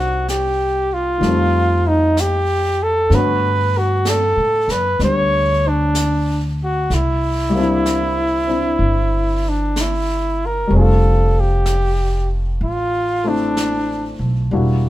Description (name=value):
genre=jazz ballad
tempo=63 BPM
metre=4/4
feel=swing 67% on 8ths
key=unclear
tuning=A4 = 440 Hz
part: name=warm flugelhorn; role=melody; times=0.0-14.2 s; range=D4 to C#5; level=-18 LUFS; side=equal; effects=none
part: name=warm grand piano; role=accompaniment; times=0.0-14.9 s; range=D3 to C#5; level=-23 LUFS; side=left 2 dB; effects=none
part: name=upright bass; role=bass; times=0.0-14.9 s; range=E1 to A2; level=-19 LUFS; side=equal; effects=none
part: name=jazz brush drum kit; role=drums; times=0.3-14.9 s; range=brushed snare drum, hi-hat, snare drum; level=-30 LUFS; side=right 1 dB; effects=none
room=light reverb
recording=band playing live in one room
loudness=-15 LUFS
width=side -15 dB against mid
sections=0.0-14.9 A section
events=none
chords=0.0 Cm7; 1.2 F9; 3.1 Gmaj9#11; 6.9 C7; 10.7 F6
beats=0.28 1.23 2.17 | 3.11 4.05 5.00 5.95 | 6.90 7.85 8.80 9.76 | 10.71 11.66 12.61 13.56 | 14.52